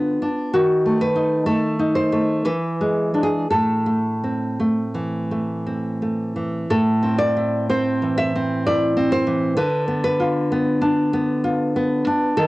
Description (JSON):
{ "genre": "romantic piece for solo classical guitar", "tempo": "56-66 BPM", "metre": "3/4", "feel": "rubato", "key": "A minor", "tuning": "A4 = 444 Hz", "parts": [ { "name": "nylon-string guitar", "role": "solo", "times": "0.0-12.5 s", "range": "A2 to E5", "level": "-18 LUFS", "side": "equal", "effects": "cassette tape" } ], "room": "moderate small room reverb, RT60 0.5 s", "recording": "home recording on cassette", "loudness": "-18 LUFS", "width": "side -19 dB against mid", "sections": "0.0-6.7 A section; 6.7-12.5 B section", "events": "none", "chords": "0.0 Bdim/D; 0.5 D#dim7; 2.4 E7; 3.5 Am; 9.6 Bdim/D" }